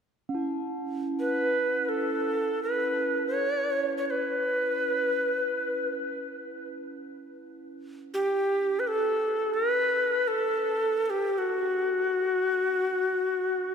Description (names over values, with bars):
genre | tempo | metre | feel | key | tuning
world meditative, free-time meditation music | free time | none | none | unclear | A4 = 441 Hz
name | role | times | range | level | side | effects
bronze singing bowl | texture | 0.3-8.0 s | C#4 to E4 | -36 LUFS | right 2 dB | none
breathy bright Native American-style cedar flute | melody | 1.2-13.7 s | F#4 to C#5 | -25 LUFS | equal | ping-pong delay
room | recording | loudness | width
wet cathedral reverb, RT60 4.5 s | none | -25 LUFS | side -6 dB against mid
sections
0.0-13.7 A section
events
none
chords
none